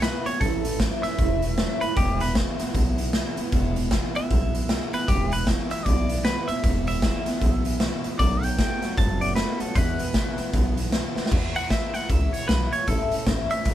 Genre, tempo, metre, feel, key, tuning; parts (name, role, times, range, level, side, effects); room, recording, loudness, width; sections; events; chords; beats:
rockabilly; 154 BPM; 4/4; swing 61% on 8ths; E major; A4 = 440 Hz
clean electric guitar; melody; 0.0-13.7 s; G4 to A5; -29 LUFS; equal; phaser
picked steel-string acoustic guitar; accompaniment; 0.0-13.7 s; E2 to F#4; -32 LUFS; left 5 dB
electric guitar through a small old amp; riff; 0.0-11.3 s; E2 to G#3; -31 LUFS; right 4 dB; spring reverb
upright bass; bass; 0.0-13.7 s; E1 to E2; -27 LUFS; equal
raw garage drum kit; drums; 0.0-13.7 s; crash cymbal, hi-hat, kick drum, snare drum; -25 LUFS; equal
light reverb; band playing live in one room; -21 LUFS; side -12 dB against mid
0.0-11.3 A section; 11.3-13.7 A section
drum fill 11.1
0.4 A; 2.0 E; 8.2 B7; 9.8 E; 12.9 A
0.02 | 0.41 0.80 1.19 1.58 | 1.97 2.36 2.75 3.13 | 3.52 3.91 4.30 4.69 | 5.08 5.47 5.86 6.25 | 6.64 7.03 7.42 7.81 | 8.20 8.59 8.97 9.37 | 9.76 10.14 10.53 10.92 | 11.31 11.71 12.10 12.48 | 12.88 13.27 13.66